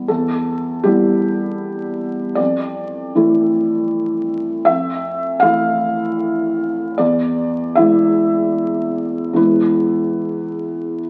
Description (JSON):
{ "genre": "neoclassical minimalist piano", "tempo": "77 BPM", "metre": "3/4", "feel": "rubato", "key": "unclear", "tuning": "A4 = 443 Hz", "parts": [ { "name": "felt-muted upright piano", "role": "solo", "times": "0.0-11.1 s", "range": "E2 to F5", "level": "-18 LUFS", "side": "equal", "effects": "none" } ], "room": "moderate large studio reverb, RT60 1.2 s", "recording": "very old 78 rpm record, vinyl crackle", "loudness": "-18 LUFS", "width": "mono", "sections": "0.0-11.1 A section", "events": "none", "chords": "0.0 Em; 2.4 Dmadd9/F; 7.0 E" }